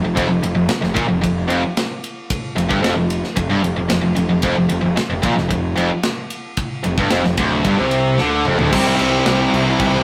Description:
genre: heavy metal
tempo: 112 BPM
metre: 4/4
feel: straight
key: unclear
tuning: A4 = 440 Hz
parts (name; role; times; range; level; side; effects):
- distorted electric guitar; riff; 0.0-10.0 s; D2 to C4; -22 LUFS; equal; overdrive
- tight distorted guitar; riff; 0.0-10.0 s; D2 to G3; -22 LUFS; equal; distortion
- fuzz picked electric bass; bass; 0.0-10.0 s; D1 to D2; -25 LUFS; equal; overdrive
- tight metal drum kit; drums; 0.2-9.9 s; crash cymbal, kick drum, ride cymbal, snare drum, toms; -25 LUFS; equal; none
- clear symphonic string section; sustained chords; 8.7-10.0 s; C3 to G4; -31 LUFS; equal; none
room: light reverb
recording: rough rehearsal-room recording, warm saturation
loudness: -18 LUFS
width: mono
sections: 0.0-8.7 A section; 8.7-10.0 B section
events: drum fill 8.2-8.7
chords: 0.0 F5; 8.7 C

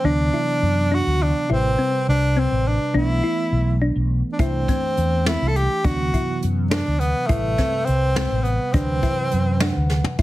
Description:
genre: progressive instrumental, band music in an uneven meter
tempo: 207 BPM (eighths)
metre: 5/8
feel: straight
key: unclear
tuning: A4 = 440 Hz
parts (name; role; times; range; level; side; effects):
- clear tenor saxophone; melody; 0.0-9.9 s; A3 to A4; -23 LUFS; equal; plate reverb
- bright tine electric piano; accompaniment; 0.0-10.2 s; C3 to F#5; -27 LUFS; right 1 dB; medium stereo tremolo
- thumb-piano-like synth pluck; arpeggios; 0.0-10.2 s; C4 to E4; -28 LUFS; left 2 dB; chorus, plate reverb
- mellow fretless electric bass; bass; 0.0-10.2 s; G1 to F#2; -21 LUFS; equal; analog chorus
- jazz brush drum kit; drums; 4.4-10.2 s; hi-hat, kick drum, snare drum, toms; -24 LUFS; equal; none
room: moderate studio reverb, RT60 0.7 s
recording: heavily compressed radio sound, multiband compression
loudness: -18 LUFS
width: side -16 dB against mid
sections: 0.0-10.2 A section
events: tine electric piano fill 9.3-10.2; drum fill 9.9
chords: 0.1 D13; 1.5 Am7; 2.9 Asus24/B; 4.4 C6; 5.8 D13; 7.3 Am7; 8.7 D13

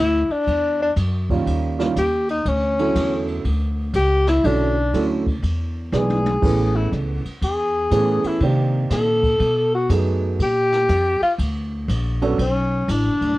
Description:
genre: jazz, small-group swing and bop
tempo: 121 BPM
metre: 4/4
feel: swing 66% on 8ths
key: unclear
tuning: A4 = 439 Hz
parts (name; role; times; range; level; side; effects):
- mellow tenor saxophone; melody; 0.0-13.4 s; C#4 to A4; -20 LUFS; left 1 dB; cassette tape
- upright bass; bass; 0.0-13.4 s; D1 to C3; -22 LUFS; equal; none
- jazz brush drum kit; drums; 0.3-13.3 s; crash cymbal, hi-hat, kick drum, ride cymbal, snare drum, toms; -30 LUFS; equal; cassette tape
- warm baby grand piano; accompaniment; 1.3-12.4 s; D3 to A4; -22 LUFS; right 4 dB; cassette tape
room: light reverb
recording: home recording on cassette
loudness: -18 LUFS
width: side -18 dB against mid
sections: 0.0-13.4 A section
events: tenor saxophone solo 0.0-13.4; drum fill 5.9-6.4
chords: 0.5 Emadd9; 1.5 D#9; 2.5 Dmaj9; 4.4 Bm11; 5.4 E7; 6.4 Amaj7; 8.4 Cm7; 9.4 B7; 10.4 Bb; 12.4 Bm7

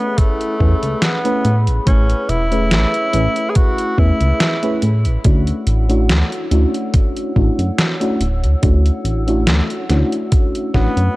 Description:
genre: vaporwave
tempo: 71 BPM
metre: 4/4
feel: swing 54% on 16ths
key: A major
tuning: A4 = 438 Hz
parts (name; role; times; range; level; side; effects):
- clear tenor saxophone; melody; 0.0-4.8, 10.7-11.2 s; A3 to G#4; -21 LUFS; equal; vintage 12-bit sampler grit, tape echo
- mellow FM electric piano; accompaniment; 0.0-11.2 s; A3 to B4; -21 LUFS; equal; analog chorus, analog delay
- warbly tape-like pad; sustained chords; 0.0-11.2 s; G#4 to E6; -32 LUFS; equal; chorus, built-in reverb
- detuned 8-bit digital drum machine; drums; 0.2-11.1 s; hi-hat, snare drum; -20 LUFS; equal; none
- electronic kick drum; drums; 0.2-10.9 s; none; -15 LUFS; equal; none
- chorused synth bass; bass; 0.6-11.1 s; D1 to A2; -15 LUFS; equal; tube saturation
room: digital ambience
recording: dry, gritty hardware recording, cassette tape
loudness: -14 LUFS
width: side -19 dB against mid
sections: 0.0-11.2 A section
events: none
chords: 0.0 Amaj9; 5.2 Dmaj9

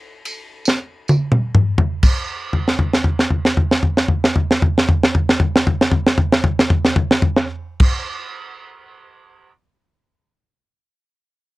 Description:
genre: gospel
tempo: 40 BPM (dotted quarters)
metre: 6/8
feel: straight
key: none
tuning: none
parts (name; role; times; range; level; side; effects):
- tight funk drum kit; drums; 0.3-9.5 s; crash cymbal, kick drum, ride cymbal, snare drum, toms; -15 LUFS; equal; none
- tambourine; percussion; 0.3-8.0 s; none; -28 LUFS; right 3 dB; none
room: light reverb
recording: worn, warbling old tape, cassette tape, warbly pitch drift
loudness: -15 LUFS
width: side -19 dB against mid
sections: 0.0-2.0 A section; 2.0-8.1 B section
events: slowing down 0.0-2.0; drum fill 0.7-2.0, 2.5-7.8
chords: none

